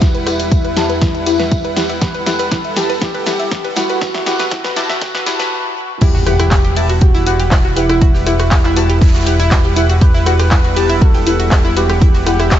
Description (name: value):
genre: progressive house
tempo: 120 BPM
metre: 4/4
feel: straight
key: E minor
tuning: A4 = 443 Hz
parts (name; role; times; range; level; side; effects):
- expressive synth lead; melody; 0.0-12.6 s; E4 to B4; -21 LUFS; right 1 dB; wide subtle chorus, tape echo
- supersaw pad; sustained chords; 0.0-12.6 s; G3 to F#5; -25 LUFS; right 2 dB; sidechain pumping
- analog pluck; arpeggios; 0.0-12.6 s; E4 to E5; -21 LUFS; equal; chorus, sidechain pumping, digital delay
- deep mellow chord stab; stabs; 0.0-12.3 s; G3 to A5; -21 LUFS; left 4 dB; chorus, phaser, sidechain pumping, digital delay
- fat analog bass; bass; 0.0-12.6 s; E1; -17 LUFS; equal; sidechain pumping
- electronic kick drum; drums; 0.0-12.6 s; none; -12 LUFS; equal; overdrive
- house drum kit; drums; 0.0-12.6 s; crash cymbal, handclaps, hi-hat, rim click, snare drum; -21 LUFS; equal; none
- tambourine; percussion; 0.0-5.5 s; none; -29 LUFS; left 1 dB; none
- gated 80s drum kit; drums; 6.0-12.6 s; hi-hat, snare drum; -31 LUFS; right 2 dB; sidechain pumping on hats, high-pass filter on hats, high-pass filter on snare, high-pass filter on room
- impact; sound effects; 6.1-8.0 s; none; -24 LUFS; equal; none
room: light reverb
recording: dark, warm production, high-pass filter, nothing above 7.8 kHz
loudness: -11 LUFS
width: side -11 dB against mid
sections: 0.0-6.0 A section; 6.0-12.6 B section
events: build-up 0.0-6.0; drum fill 0.0-5.5; filter sweep on synth pluck 0.0-6.0; filter sweep 0.0-6.0; break 5.5-6.0; drop 6.0-12.6; impact 6.0-8.0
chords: 0.0 Emadd9